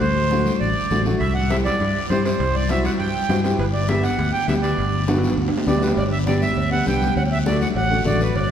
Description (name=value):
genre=latin, cumbia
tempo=202 BPM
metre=4/4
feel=straight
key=G major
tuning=A4 = 441 Hz
part: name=accordion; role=melody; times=0.0-8.5 s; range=B4 to G5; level=-24 LUFS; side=right 2 dB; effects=none
part: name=dark upright piano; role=accompaniment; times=0.0-8.3 s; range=A3 to G4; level=-24 LUFS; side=equal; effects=none
part: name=fingered electric bass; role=bass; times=0.0-8.5 s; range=G1 to G2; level=-22 LUFS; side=left 1 dB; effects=none
part: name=guiro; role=percussion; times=0.0-8.5 s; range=none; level=-36 LUFS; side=left 3 dB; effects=none
part: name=congas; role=percussion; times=0.2-8.4 s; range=none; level=-27 LUFS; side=left 3 dB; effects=none
part: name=timbales and cowbell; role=percussion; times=1.2-8.5 s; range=none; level=-31 LUFS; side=right 3 dB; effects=none
room=wet church reverb, RT60 3.1 s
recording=recorded in a church or concert hall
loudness=-18 LUFS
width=side -9 dB against mid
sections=0.0-6.0 A section; 6.0-8.5 B section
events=drum fill 5.1-6.0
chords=0.0 D7; 1.2 C; 3.6 G; 7.2 D